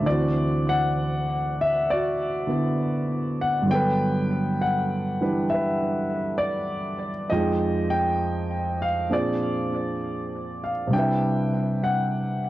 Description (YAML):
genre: jazz ballad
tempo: 66 BPM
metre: 4/4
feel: swing 68% on 8ths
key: G major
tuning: A4 = 440 Hz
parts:
  - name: warm grand piano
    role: solo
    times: 0.0-12.5 s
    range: D2 to G5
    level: -22 LUFS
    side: equal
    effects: analog delay
room: wet small room reverb, RT60 0.6 s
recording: worn, warbling old tape, cassette tape, warbly pitch drift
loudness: -22 LUFS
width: side -15 dB against mid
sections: 0.0-12.5 A section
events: none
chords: 0.1 D9; 3.7 Gmaj7; 7.3 Fm7; 9.1 Bb9; 10.9 Cmaj7